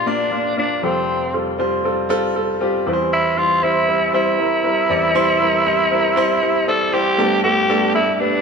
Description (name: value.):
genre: pop.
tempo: 118 BPM.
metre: 4/4.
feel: straight.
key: unclear.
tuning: A4 = 440 Hz.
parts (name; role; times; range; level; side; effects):
raspy tenor saxophone; melody; 0.0-8.4 s; C4 to A4; -18 LUFS; right 1 dB; ping-pong delay.
clear baby grand piano; accompaniment; 0.0-8.4 s; F1 to D5; -19 LUFS; equal; none.
room: wet lush hall reverb, RT60 2.8 s.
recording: none.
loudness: -15 LUFS.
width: side -5 dB against mid.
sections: 0.0-7.2 A section; 7.2-8.4 B section.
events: none.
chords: 0.0 Bb; 0.8 Fadd9; 2.9 C/E; 7.2 Gadd9.